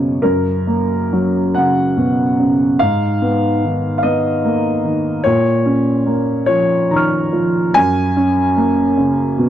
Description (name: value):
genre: neoclassical minimalist piano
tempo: 49 BPM (dotted quarters)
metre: 6/8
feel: rubato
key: F# major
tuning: A4 = 438 Hz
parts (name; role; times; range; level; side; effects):
- dark concert grand piano; solo; 0.0-9.5 s; F#2 to E#6; -13 LUFS; equal; none
room: light reverb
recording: dry, close 1970s-style studio recording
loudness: -13 LUFS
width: side -11 dB against mid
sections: 0.0-9.5 A section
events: none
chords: 0.0 F#; 2.8 G#m; 5.2 A#m; 7.7 F#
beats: | 0.22 1.53 | 2.78 4.01 | 5.23 6.47 | 7.74 8.96